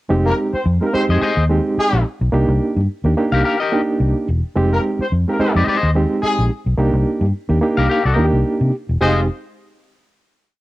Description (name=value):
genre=funk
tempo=108 BPM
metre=4/4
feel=swing 56% on 16ths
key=F dorian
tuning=A4 = 440 Hz
part: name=reed electric piano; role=stabs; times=0.1-9.3 s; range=Ab3 to G4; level=-19 LUFS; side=right 2 dB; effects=overdrive, fast tremolo, cassette tape, plate reverb
part: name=vintage muted fingered electric bass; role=bass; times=0.1-9.3 s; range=E1 to C3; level=-17 LUFS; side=equal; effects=none
part: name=warm horn section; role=second line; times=0.3-9.2 s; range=Ab3 to C5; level=-20 LUFS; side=left 1 dB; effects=cassette tape, plate reverb
part: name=electric guitar at the edge of break-up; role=accompaniment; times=1.1-9.2 s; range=G4 to F5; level=-19 LUFS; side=left 4 dB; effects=cassette tape
room=light reverb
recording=home recording on cassette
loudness=-15 LUFS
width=side -17 dB against mid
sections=0.1-9.0 groove; 9.0-10.6 final chord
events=none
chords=0.1 Fm7; 2.3 Cm7; 4.6 Fm7; 6.8 Cm7; 9.0 Fm7